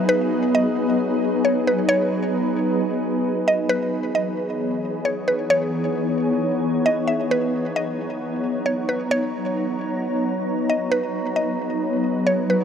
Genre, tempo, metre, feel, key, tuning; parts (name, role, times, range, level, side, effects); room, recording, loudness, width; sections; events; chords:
hip hop; 133 BPM; 4/4; half-time; C# dorian; A4 = 442 Hz
mallet-like synth pluck; melody; 0.0-12.6 s; B4 to E5; -24 LUFS; equal; chorus, tape echo
shimmering ambient pad; sustained chords; 0.0-12.6 s; E3 to A#5; -22 LUFS; equal; chorus, built-in reverb
wet huge ambient reverb, RT60 7.0 s; dark, warm production; -20 LUFS; side -8 dB against mid
0.0-3.7 A section; 3.7-12.6 B section
0.0 G#m7; 3.7 C#m9; 7.3 Bmaj9; 10.9 G#m7